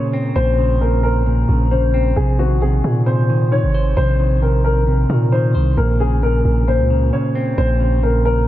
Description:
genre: hip hop, trap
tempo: 133 BPM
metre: 4/4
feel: half-time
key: Bb minor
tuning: A4 = 440 Hz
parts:
  - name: dark concert grand piano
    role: melody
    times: 0.0-8.5 s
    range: Gb4 to Db5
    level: -21 LUFS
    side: left 2 dB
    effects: lush chorus, low-pass filter, tape echo
  - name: clean electric guitar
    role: accompaniment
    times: 0.0-8.5 s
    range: Bb2 to C5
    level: -19 LUFS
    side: right 1 dB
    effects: low-pass filter
  - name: long sustained 808-style bass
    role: bass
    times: 0.4-8.5 s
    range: Ab1 to Bb2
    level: -17 LUFS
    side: equal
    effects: none
room: moderate cathedral reverb, RT60 4.7 s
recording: dreamy mix soaked in reverb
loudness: -14 LUFS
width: side -14 dB against mid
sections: 0.0-8.5 A section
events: none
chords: 0.0 Bbmadd9; 2.2 Ab (rootless); 5.8 Bbmadd9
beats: | 0.36 0.81 1.26 1.71 | 2.17 2.62 3.07 3.52 | 3.97 4.42 4.87 5.32 | 5.77 6.22 6.68 7.13 | 7.58 8.03

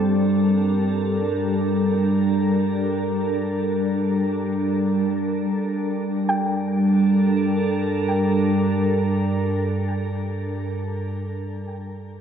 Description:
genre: ambient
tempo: free time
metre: none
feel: none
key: G minor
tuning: A4 = 440 Hz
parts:
  - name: glassy FM pad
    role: sustained chords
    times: 0.0-11.1 s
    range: G3 to Bb4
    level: -20 LUFS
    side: equal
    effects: ensemble chorus, built-in reverb, shimmer reverb
  - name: deep rumbling drone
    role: bass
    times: 0.0-9.8 s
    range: G2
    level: -31 LUFS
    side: right 1 dB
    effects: built-in reverb
  - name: soft round pluck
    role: arpeggios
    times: 6.3-10.6 s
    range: G5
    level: -27 LUFS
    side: left 1 dB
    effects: chorus, diffuse ambient delay, shimmer reverb
room: moderate plate reverb, RT60 2.5 s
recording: dreamy mix soaked in reverb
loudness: -20 LUFS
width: side -8 dB against mid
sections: 0.0-6.3 A section; 6.3-11.1 B section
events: none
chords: 0.0 Gm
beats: free time

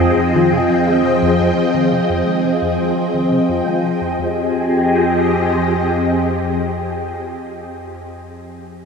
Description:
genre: ambient, sequencer-driven space music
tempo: 86 BPM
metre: 4/4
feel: straight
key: F minor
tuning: A4 = 442 Hz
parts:
  - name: phased string machine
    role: sustained chords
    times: 0.0-7.7 s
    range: F3 to G5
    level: -15 LUFS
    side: left 1 dB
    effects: ensemble chorus, phaser
  - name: plucky analog bass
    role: riff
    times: 0.0-4.5 s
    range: F2 to Ab3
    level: -24 LUFS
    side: equal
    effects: ensemble chorus, analog delay
  - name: analog drone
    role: bass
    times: 0.0-6.2 s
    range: F2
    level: -28 LUFS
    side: equal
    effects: chorus
  - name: vibraphone with soft mallets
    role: arpeggios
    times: 0.2-4.5 s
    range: none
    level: barely audible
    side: none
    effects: none
room: wet huge ambient reverb, RT60 7.6 s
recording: cassette tape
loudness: -14 LUFS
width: side -5 dB against mid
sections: 0.0-4.2 A section; 4.2-7.0 B section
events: fade-out on analog synth bass 0.0-4.2; fade-out on synth drone 0.0-4.2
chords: 0.0 Fm7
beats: 0.00 0.69 | 1.39 2.09 2.79 3.48 | 4.18 4.88 5.58 6.28

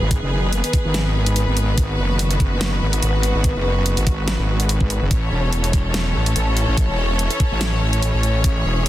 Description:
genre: heavy wobble dubstep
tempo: 144 BPM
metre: 4/4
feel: swing 54% on 16ths, half-time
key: G# phrygian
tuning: A4 = 439 Hz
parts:
  - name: rich symphonic string section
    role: sustained chords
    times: 0.0-8.9 s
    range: D#3 to C#5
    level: -23 LUFS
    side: left 1 dB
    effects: sidechain pumping
  - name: wobble bass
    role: bass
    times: 0.0-8.9 s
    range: E1 to A1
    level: -19 LUFS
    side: equal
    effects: chorus, overdrive
  - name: dubstep drum kit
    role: drums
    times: 0.1-8.9 s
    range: hi-hat, snare drum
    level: -26 LUFS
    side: equal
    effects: none
  - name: electronic kick drum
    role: drums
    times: 0.1-8.5 s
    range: none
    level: -19 LUFS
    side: equal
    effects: none
room: light reverb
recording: dense, heavily limited modern master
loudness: -17 LUFS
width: side -14 dB against mid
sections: 0.0-8.9 A section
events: none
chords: 0.0 G#m; 5.1 A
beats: | 0.11 0.53 0.94 1.36 | 1.77 2.19 2.61 3.02 | 3.44 3.86 4.28 4.69 | 5.11 5.53 5.94 6.36 | 6.78 7.19 7.61 8.03 | 8.44 8.86

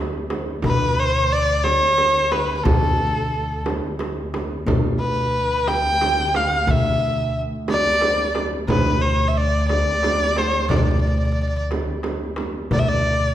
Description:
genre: Arabic maqam ensemble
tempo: 60 BPM (dotted quarters)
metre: 6/8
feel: straight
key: D maqam rast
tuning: A4 = 440 Hz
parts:
  - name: rich double bass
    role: drone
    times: 0.0-12.8 s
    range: D2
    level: -29 LUFS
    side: equal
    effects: none
  - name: darbuka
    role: percussion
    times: 0.3-13.1 s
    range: none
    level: -27 LUFS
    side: left 2 dB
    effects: none
  - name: frame drum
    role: percussion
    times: 0.3-12.9 s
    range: none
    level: -26 LUFS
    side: right 3 dB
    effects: none
  - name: upright bass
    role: bass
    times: 0.6-13.3 s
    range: D2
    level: -24 LUFS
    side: equal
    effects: none
  - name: warm erhu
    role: melody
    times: 0.7-13.3 s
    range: A4 to G5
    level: -20 LUFS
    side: left 1 dB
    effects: none
room: wet recital hall reverb, RT60 1.4 s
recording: recorded in a church or concert hall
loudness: -18 LUFS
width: side -11 dB against mid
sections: 0.0-12.7 A section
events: none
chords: none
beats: | 0.64 1.64 | 2.65 3.65 | 4.66 5.67 | 6.67 7.68 | 8.68 9.69 | 10.69 11.70 | 12.70

